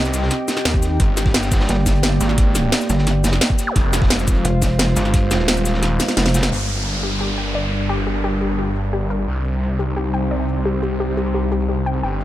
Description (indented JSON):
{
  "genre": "dark technical drum and bass",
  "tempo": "174 BPM",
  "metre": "4/4",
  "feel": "straight",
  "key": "G phrygian",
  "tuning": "A4 = 440 Hz",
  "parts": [
    { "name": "dark analog pad", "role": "sustained chords", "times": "0.0-12.2 s", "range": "G3 to G5", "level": "-24 LUFS", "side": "equal", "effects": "chorus, sidechain pumping" },
    { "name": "snarling distorted saw bass", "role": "bass", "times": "0.0-12.2 s", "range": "Eb1 to C2", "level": "-21 LUFS", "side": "equal", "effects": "distortion, overdrive" },
    { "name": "crunchy breakbeat drum kit", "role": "drums", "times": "0.0-6.5 s", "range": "hi-hat, snare drum", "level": "-29 LUFS", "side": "equal", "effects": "high-pass filter on hats, high-pass filter on snare, high-pass filter on room" },
    { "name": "drum and bass drum kit", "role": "drums", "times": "0.1-12.2 s", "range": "crash cymbal, hi-hat, shaker, snare drum", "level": "-21 LUFS", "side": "equal", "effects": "low-pass filter on hats, low-pass filter on snare, low-pass filter on perc, low-pass filter on cymbals, low-pass filter on room" },
    { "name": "pulsing pluck wobble bass", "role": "bass", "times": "0.7-6.5 s", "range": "F1 to Eb2", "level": "-18 LUFS", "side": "equal", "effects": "chorus, tube saturation" },
    { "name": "electronic kick drum", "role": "drums", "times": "0.7-5.2 s", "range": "none", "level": "-18 LUFS", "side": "equal", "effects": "none" },
    { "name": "zap and downlifter", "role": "sound effects", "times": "3.7-3.8, 6.5-9.3 s", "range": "none", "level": "-27 LUFS", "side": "equal", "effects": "none" },
    { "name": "wide unison pluck", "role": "arpeggios", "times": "7.0-12.1 s", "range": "G4 to G5", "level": "-26 LUFS", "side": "left 2 dB", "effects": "sidechain pumping, digital delay" }
  ],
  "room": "light reverb, digital ambience",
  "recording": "none",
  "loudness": "-16 LUFS",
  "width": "side -14 dB against mid",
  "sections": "0.0-6.5 A section; 6.5-12.2 B section",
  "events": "drop 0.0-6.5; kick drops out 5.8-6.5; drum fill 6.0-6.5; band accent 6.4; filter sweep on synth arpeggio sound 6.5-12.2",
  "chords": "0.0 Cm; 1.0 Gm; 3.8 Fm; 6.5 Gm; 9.3 Cm"
}